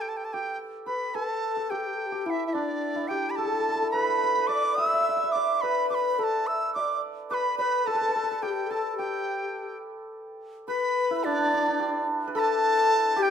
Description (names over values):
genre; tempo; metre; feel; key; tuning
chinese traditional, Chinese chamber ensemble; 107 BPM; 2/4; straight; G gong mode; A4 = 440 Hz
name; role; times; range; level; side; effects
bright reedy large dizi; melody; 0.0-13.3 s; D5 to E6; -26 LUFS; right 1 dB; none
hammered dulcimer; second line; 0.0-13.3 s; D4 to E5; -30 LUFS; right 4 dB; none
breathy low xiao; second line; 0.9-13.3 s; D4 to G5; -30 LUFS; left 9 dB; none
room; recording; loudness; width
moderate recital hall reverb, RT60 1.4 s; minimal, uncompressed stereo recording; -24 LUFS; side -8 dB against mid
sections
0.0-1.2 A section; 1.2-10.1 B section; 10.1-13.3 C section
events
none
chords
none